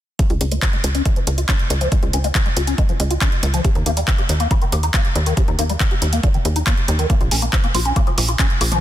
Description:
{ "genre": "uplifting trance", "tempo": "139 BPM", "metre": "4/4", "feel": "straight", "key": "unclear", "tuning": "A4 = 440 Hz", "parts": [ { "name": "liquid acid bass", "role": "arpeggios", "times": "0.2-8.8 s", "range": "Eb3 to G4", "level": "-24 LUFS", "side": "left 2 dB", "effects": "phaser, wide subtle chorus, cassette tape, sidechain pumping, tape echo" }, { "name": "big-room dance drum kit", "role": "drums", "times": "0.2-8.8 s", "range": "handclaps, hi-hat, toms", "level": "-23 LUFS", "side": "equal", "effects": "overdrive, studio reverb" }, { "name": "electronic kick drum", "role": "drums", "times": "0.2-8.5 s", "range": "none", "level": "-18 LUFS", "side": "equal", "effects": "studio reverb" }, { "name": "tight sequencer bass", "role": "bass", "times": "0.3-8.8 s", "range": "Bb1 to Eb2", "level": "-19 LUFS", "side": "equal", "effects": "sidechain pumping" } ], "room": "little or no reverb", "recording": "dense, heavily limited modern master", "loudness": "-16 LUFS", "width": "side -12 dB against mid", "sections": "0.2-8.8 A section", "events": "filter sweep on acid bass 0.2-8.8", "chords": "0.2 Db; 3.6 N.C.; 7.1 Bb5" }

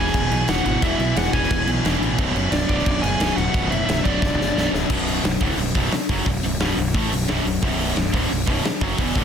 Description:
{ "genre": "heavy metal", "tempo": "176 BPM", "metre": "4/4", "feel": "straight", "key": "B dorian, B minor from 4.9 s", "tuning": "A4 = 440 Hz", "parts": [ { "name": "high-gain lead guitar", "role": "melody", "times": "0.0-4.7 s", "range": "D5 to G#5", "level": "-26 LUFS", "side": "left 1 dB", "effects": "distortion, ping-pong delay" }, { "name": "bluesy overdriven lead guitar", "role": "second line", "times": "0.0-4.7 s", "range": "D4 to G#4", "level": "-32 LUFS", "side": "right 3 dB", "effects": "distortion" }, { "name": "fuzz guitar", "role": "riff", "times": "0.0-9.2 s", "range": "B1 to A3", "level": "-27 LUFS", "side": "left 1 dB", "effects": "distortion" }, { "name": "high-gain distorted guitar", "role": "riff", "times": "0.0-9.2 s", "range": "B1 to A3", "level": "-28 LUFS", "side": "left 10 dB", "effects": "distortion" }, { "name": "tight distorted guitar", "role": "riff", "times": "0.0-9.2 s", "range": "B1 to A3", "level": "-27 LUFS", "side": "right 9 dB", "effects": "distortion" }, { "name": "fuzz fingered electric bass", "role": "bass", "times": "0.0-9.2 s", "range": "B0 to B1", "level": "-26 LUFS", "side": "equal", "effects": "overdrive" }, { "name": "big rock drum kit", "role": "drums", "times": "0.1-9.2 s", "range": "crash cymbal, hi-hat, kick drum, snare drum", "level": "-23 LUFS", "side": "equal", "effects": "none" } ], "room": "small room ambience", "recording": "dense, heavily limited modern master", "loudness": "-18 LUFS", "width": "side -8 dB against mid", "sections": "0.0-4.9 A section; 4.9-9.2 B section", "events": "drum fill 4.2-4.9", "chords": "0.0 E; 2.2 Bm" }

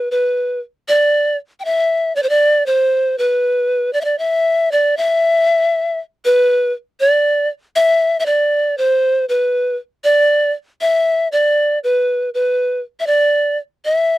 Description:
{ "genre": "andean folk", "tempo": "79 BPM (dotted quarters)", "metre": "6/8", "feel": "straight", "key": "unclear", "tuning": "A4 = 441 Hz", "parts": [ { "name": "breathy bright pan flute", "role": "solo", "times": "0.0-14.2 s", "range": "B4 to G5", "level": "-13 LUFS", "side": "equal", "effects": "none" } ], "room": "little or no reverb", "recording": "dry, close 1970s-style studio recording", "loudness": "-14 LUFS", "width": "side -16 dB against mid", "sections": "0.0-6.5 A section; 6.5-14.2 A section", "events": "none", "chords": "none" }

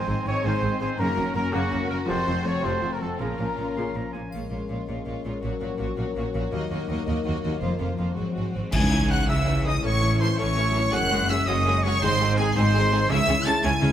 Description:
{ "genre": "cinematic, heroic adventure film score", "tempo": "110 BPM (dotted quarters)", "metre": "6/8", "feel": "straight", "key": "Bb minor, C# harmonic minor from 8.7 s", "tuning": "A4 = 440 Hz", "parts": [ { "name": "warm symphonic violin section", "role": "melody", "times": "0.0-13.9 s", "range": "Gb4 to A6", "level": "-32 LUFS", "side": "left 1 dB", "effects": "none" }, { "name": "clear clarinet", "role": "second line", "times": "0.0-4.3 s", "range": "C4 to Db4", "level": "-38 LUFS", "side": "left 1 dB", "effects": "none" }, { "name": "clear oboe", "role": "second line", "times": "0.0-4.3, 8.7-13.9 s", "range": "G#4 to C6", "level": "-34 LUFS", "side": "right 1 dB", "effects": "none" }, { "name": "mellow hollow large flute ensemble", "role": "second line", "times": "0.0-4.1, 8.7-13.7 s", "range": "G#4 to Db6", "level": "-34 LUFS", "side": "right 1 dB", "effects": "none" }, { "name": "warm symphonic violin section", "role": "second line", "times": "0.0-13.9 s", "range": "C4 to A4", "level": "-36 LUFS", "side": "left 2 dB", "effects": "none" }, { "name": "warm symphonic viola section", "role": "accompaniment", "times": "0.0-13.9 s", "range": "C3 to D#4", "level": "-34 LUFS", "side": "equal", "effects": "none" }, { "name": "mellow French horn section", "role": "sustained chords", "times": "0.0-13.9 s", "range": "E3 to E4", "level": "-33 LUFS", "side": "left 4 dB", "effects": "none" }, { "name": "concert harp", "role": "arpeggios", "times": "0.0-13.9 s", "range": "F2 to G#5", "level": "-32 LUFS", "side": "left 6 dB", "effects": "none" }, { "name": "bright trumpet section", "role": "stabs", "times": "0.0-4.1, 8.7-13.9 s", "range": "Gb4 to A5", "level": "-29 LUFS", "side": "right 2 dB", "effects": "none" }, { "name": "bright symphonic cello section", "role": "bass", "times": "0.1-13.9 s", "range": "Eb2 to C#3", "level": "-30 LUFS", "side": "right 2 dB", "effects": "none" }, { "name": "rich symphonic double bass section", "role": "bass", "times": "0.1-13.9 s", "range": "F1 to Eb2", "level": "-29 LUFS", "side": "right 2 dB", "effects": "none" }, { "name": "triangle, cymbal swell, clash cymbals and concert bass drum", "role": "percussion", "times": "4.3-9.4 s", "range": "none", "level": "-30 LUFS", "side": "equal", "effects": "none" }, { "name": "timpani", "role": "percussion", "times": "8.7-9.3, 12.0-13.6 s", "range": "G#2 to C#3", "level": "-30 LUFS", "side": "left 1 dB", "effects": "none" } ], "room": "moderate scoring stage reverb, RT60 1.6 s", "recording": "none", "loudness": "-22 LUFS", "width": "side -10 dB against mid", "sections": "0.0-4.3 A section; 4.3-8.7 B section; 8.7-13.9 C section", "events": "band accent 8.7-9.1", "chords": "0.0 Ab; 1.0 Gb; 2.1 F; 3.2 Bbm; 4.3 Bbm7; 5.4 Gb/Bb; 6.5 Ebm; 7.6 Fsus4; 8.2 Ab7; 8.7 C#madd9; 9.8 A; 10.9 F#sus2; 12.0 G#; 13.1 C#m" }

